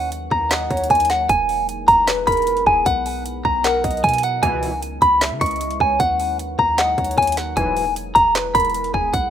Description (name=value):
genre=hip hop, trap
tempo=153 BPM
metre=4/4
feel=half-time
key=unclear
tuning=A4 = 440 Hz
part: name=clean electric guitar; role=melody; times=0.0-9.3 s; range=Gb5 to Db6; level=-17 LUFS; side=equal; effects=phaser, tape echo
part: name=deep dark ambient pad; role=sustained chords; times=0.0-9.3 s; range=Gb3 to Cb5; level=-32 LUFS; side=equal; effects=chorus, built-in reverb
part: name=warm 808-style bass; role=bass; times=0.0-9.3 s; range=E1 to Db3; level=-29 LUFS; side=equal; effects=none
part: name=trap drum kit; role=drums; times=0.1-9.2 s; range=handclaps, hi-hat, kick drum, snare drum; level=-25 LUFS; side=equal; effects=none
part: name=warm velvety synth lead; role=second line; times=0.5-9.1 s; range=G#4 to Fb5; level=-27 LUFS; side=right 1 dB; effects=chorus, tape echo
part: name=sync-sweep polysynth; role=stabs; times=4.4-4.7, 7.6-7.8 s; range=B1 to Fb3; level=-26 LUFS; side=equal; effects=chorus
room=light reverb, digital ambience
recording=rough home demo mix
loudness=-16 LUFS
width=side -9 dB against mid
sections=0.0-9.3 A section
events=none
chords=0.0 Ebm; 1.3 E; 2.9 Bmaj7; 4.4 Dbm7; 6.0 Ebm; 7.6 E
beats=0.12 0.51 0.90 | 1.29 1.69 2.08 2.47 | 2.86 3.25 3.65 4.04 | 4.43 4.82 5.21 5.61 | 6.00 6.39 6.78 7.17 | 7.57 7.96 8.35 8.74 | 9.14